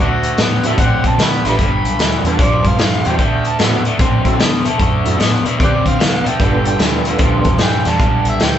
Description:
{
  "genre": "electric blues shuffle",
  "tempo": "150 BPM",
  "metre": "4/4",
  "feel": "swing 64% on 8ths",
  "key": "unclear",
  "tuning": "A4 = 439 Hz",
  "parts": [
    { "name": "overdriven harmonica", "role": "melody", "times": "0.0-8.6 s", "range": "B3 to B5", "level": "-21 LUFS", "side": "right 1 dB", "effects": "none" },
    { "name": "raw garage guitar", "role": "riff", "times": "0.0-8.6 s", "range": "G2 to C4", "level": "-18 LUFS", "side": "left 2 dB", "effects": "overdrive" },
    { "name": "vintage muted fingered electric bass", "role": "bass", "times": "0.0-8.6 s", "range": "G1 to D3", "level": "-21 LUFS", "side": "equal", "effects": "none" },
    { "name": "raw garage drum kit", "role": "drums", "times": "0.2-8.5 s", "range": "hi-hat, kick drum, snare drum", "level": "-16 LUFS", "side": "right 1 dB", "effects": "none" },
    { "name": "tonewheel organ", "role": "accompaniment", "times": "0.6-7.5 s", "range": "B3 to C5", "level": "-22 LUFS", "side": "right 3 dB", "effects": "slow rotary speaker, overdrive, chorus vibrato" }
  ],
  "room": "moderate studio reverb, RT60 0.7 s",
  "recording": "band playing live in one room, nothing above 8.0 kHz",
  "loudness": "-12 LUFS",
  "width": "side -10 dB against mid",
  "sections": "0.0-8.6 A section",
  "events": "none",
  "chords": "0.0 D9; 1.6 G9; 3.2 D9; 6.4 G9",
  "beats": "0.38 0.78 1.18 | 1.58 1.99 2.39 2.79 | 3.19 3.59 3.99 4.39 | 4.79 5.20 5.60 6.00 | 6.40 6.80 7.20 7.61 | 8.01 8.41"
}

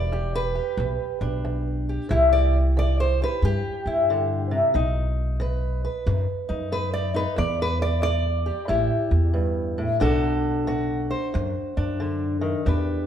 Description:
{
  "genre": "acoustic country blues, solo or duo",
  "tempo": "91 BPM",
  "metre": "4/4",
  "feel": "swing 65% on 8ths",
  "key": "unclear",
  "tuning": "A4 = 444 Hz",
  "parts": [
    { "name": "fingerpicked old ladder-braced acoustic guitar", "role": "melody", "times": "0.0-13.1 s", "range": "E2 to D5", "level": "-24 LUFS", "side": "equal", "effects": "none" },
    { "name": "upright bass", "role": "bass", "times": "0.0-13.1 s", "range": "E1 to G2", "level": "-24 LUFS", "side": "equal", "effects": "none" }
  ],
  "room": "moderate large studio reverb, RT60 1.2 s",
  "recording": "band playing live in one room",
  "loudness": "-21 LUFS",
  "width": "side -9 dB against mid",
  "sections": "0.0-12.7 A section",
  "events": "steel-string acoustic guitar solo 0.0-12.7",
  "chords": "0.0 Em7; 2.1 C; 4.7 B; 7.4 E7(no3); 8.7 A5; 10.0 Bm7",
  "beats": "0.11 0.78 1.44 | 2.10 2.76 3.42 4.08 | 4.74 5.40 6.06 6.72 | 7.38 8.04 8.70 9.36 | 10.02 10.68 11.34 12.01 | 12.67"
}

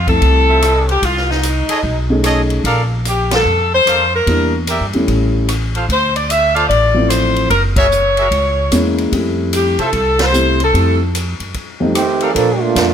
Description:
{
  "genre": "jazz, big band swing",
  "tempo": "148 BPM",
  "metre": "4/4",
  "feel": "swing 64% on 8ths",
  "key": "F major",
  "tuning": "A4 = 442 Hz",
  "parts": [
    { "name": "clear saxophone section", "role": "melody", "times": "0.0-11.0 s", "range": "Eb4 to F5", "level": "-14 LUFS", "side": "left 1 dB", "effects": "none" },
    { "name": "upright bass", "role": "bass", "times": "0.0-12.9 s", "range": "Gb1 to C3", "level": "-18 LUFS", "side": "equal", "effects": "none" },
    { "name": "dark grand piano", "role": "accompaniment", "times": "0.1-11.9 s", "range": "F2 to A4", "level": "-18 LUFS", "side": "left 1 dB", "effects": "none" },
    { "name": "swinging big-band drum kit", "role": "drums", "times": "0.1-12.9 s", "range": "hi-hat, kick drum, ride cymbal, rim click, snare drum", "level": "-22 LUFS", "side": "equal", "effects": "none" },
    { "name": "clear trumpet section", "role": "stabs", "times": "0.5-12.3 s", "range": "F4 to F5", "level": "-22 LUFS", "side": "right 2 dB", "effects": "none" },
    { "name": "warm trombone section", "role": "second line", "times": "11.9-12.9 s", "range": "Eb3 to A4", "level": "-14 LUFS", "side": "right 5 dB", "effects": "none" }
  ],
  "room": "light reverb",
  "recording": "close, detailed microphones",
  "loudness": "-12 LUFS",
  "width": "side -8 dB against mid",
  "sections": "0.0-12.4 A section",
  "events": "band accent 3.3, 7.7, 10.1",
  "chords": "0.0 Fmaj7; 1.0 Cm; 1.8 B13; 2.6 Bbmaj7; 4.3 Em7b5; 5.1 A7; 5.9 Dm7; 7.5 Gb9; 9.1 Fmaj7; 11.6 F9; 12.4 Bbmaj7",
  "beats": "0.22 0.62 | 1.03 1.43 1.84 2.25 | 2.65 3.06 3.46 3.87 | 4.27 4.68 5.08 5.49 | 5.89 6.29 6.70 7.10 | 7.51 7.91 8.32 8.72 | 9.13 9.53 9.94 10.34 | 10.74 11.15 11.55 11.95 | 12.36 12.76"
}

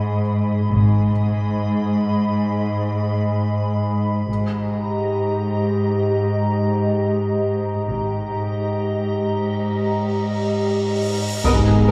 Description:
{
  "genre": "cinematic, suspense film score",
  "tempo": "free time",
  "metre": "none",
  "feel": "none",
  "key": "unclear",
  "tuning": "A4 = 440 Hz",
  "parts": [
    { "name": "glassy FM pad", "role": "sustained chords", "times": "0.0-11.9 s", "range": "B3 to B5", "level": "-26 LUFS", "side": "equal", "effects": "ensemble chorus, built-in reverb" },
    { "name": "muted chamber cello section", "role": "bass", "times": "0.0-11.9 s", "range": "G#2", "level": "-23 LUFS", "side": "equal", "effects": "none" },
    { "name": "felt-muted upright piano", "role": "texture", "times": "0.0-4.3, 11.4-11.9 s", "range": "D#5 to G6", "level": "-38 LUFS", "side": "equal", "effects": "none" },
    { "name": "muted chamber double bass section", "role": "bass", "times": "0.7-11.9 s", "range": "G#1", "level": "-24 LUFS", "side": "equal", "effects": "none" },
    { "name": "cymbal swell and impact", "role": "sound effects", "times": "9.9-11.9 s", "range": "none", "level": "-31 LUFS", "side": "equal", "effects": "none" },
    { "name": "muted symphonic viola section", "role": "accompaniment", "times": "11.4-11.5 s", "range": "B3", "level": "-28 LUFS", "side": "equal", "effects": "none" },
    { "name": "clear trombone section", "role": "sustained chords", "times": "11.4-11.9 s", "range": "D#3 to G#3", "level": "-26 LUFS", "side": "equal", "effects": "none" },
    { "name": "warm French horn section", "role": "sustained chords", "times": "11.4-11.9 s", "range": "B3 to G#4", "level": "-26 LUFS", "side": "equal", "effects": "none" },
    { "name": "taiko ensemble", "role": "drums", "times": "11.4-11.9 s", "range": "none", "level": "-24 LUFS", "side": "equal", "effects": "none" },
    { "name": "muted symphonic violin section", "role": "melody", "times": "11.5 s", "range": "D#5", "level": "-34 LUFS", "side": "equal", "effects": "none" },
    { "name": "muted symphonic violin section", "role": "second line", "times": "11.5-11.9 s", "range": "A#4", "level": "-28 LUFS", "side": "equal", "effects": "none" }
  ],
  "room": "wet concert hall reverb, RT60 2.2 s",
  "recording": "heard from further back in the room",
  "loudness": "-21 LUFS",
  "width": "mono",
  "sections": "0.0-11.4 A section",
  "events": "cymbal swell 9.9-11.4; impact 11.4-11.9",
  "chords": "0.0 G#m; 4.3 D#/G#",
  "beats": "free time"
}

